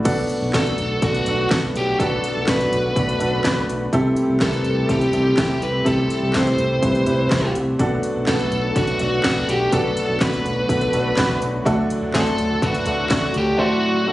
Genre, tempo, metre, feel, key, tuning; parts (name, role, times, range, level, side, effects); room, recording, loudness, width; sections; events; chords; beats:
piano-driven pop; 124 BPM; 4/4; straight; A4 = 440 Hz
clear grand piano; accompaniment; 0.0-14.1 s; B2 to C5; -22 LUFS; equal
warm analog pad; sustained chords; 0.0-14.1 s; A2 to G4; -28 LUFS; equal; chorus, tremolo
round analog bass; bass; 0.1-13.6 s; B1 to D2; -26 LUFS; equal
pop drum kit; drums; 0.1-13.5 s; crash cymbal, handclaps, hi-hat, kick drum, snare drum, toms; -24 LUFS; equal
biting lead guitar; melody; 0.6-14.1 s; F#4 to C5; -22 LUFS; equal; overdrive
light reverb; recorded on a phone in the room, studio reverb, compression, nothing above 11.0 kHz; -17 LUFS; side -16 dB against mid
0.1-14.1 A section
0.1 Bm7; 3.9 Am7/C; 7.8 Bm7; 11.7 D
| 0.06 0.54 1.03 1.51 | 1.99 2.48 2.96 3.44 | 3.93 4.41 4.89 5.38 | 5.86 6.34 6.83 7.31 | 7.79 8.28 8.76 9.24 | 9.73 10.21 10.69 11.18 | 11.66 12.14 12.62 13.11 | 13.59 14.07